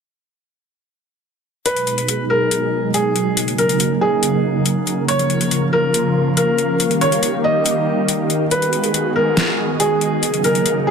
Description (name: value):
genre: heavy wobble dubstep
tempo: 140 BPM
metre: 4/4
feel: half-time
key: G# dorian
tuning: A4 = 440 Hz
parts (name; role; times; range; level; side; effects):
- felt-muted upright piano; melody; 1.7-10.9 s; G#4 to D#5; -19 LUFS; equal; dub echo
- supersaw pad; sustained chords; 1.7-10.9 s; B2 to A#4; -19 LUFS; right 1 dB; phaser, low-pass filter
- dubstep drum kit; drums; 1.7-10.7 s; hi-hat, snare drum; -20 LUFS; left 3 dB; overdrive
- ethereal airy pad; texture; 2.7-10.9 s; C#4 to C#6; -27 LUFS; equal; ensemble chorus, built-in reverb, tremolo
room: light reverb, digital ambience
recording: none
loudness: -15 LUFS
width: side -6 dB against mid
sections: 1.7-10.9 A section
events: fade-in on ambient pad 1.7-10.9; filter sweep on supersaw synth 1.7-10.9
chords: 1.7 G#m7; 3.4 D#m7; 5.1 A#m/C#; 6.8 D#; 8.5 G#m7; 10.2 D#m7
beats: | 1.66 2.08 2.51 2.94 | 3.37 3.80 4.23 4.66 | 5.08 5.51 5.94 6.37 | 6.80 7.23 7.66 8.09 | 8.51 8.94 9.37 9.80 | 10.23 10.66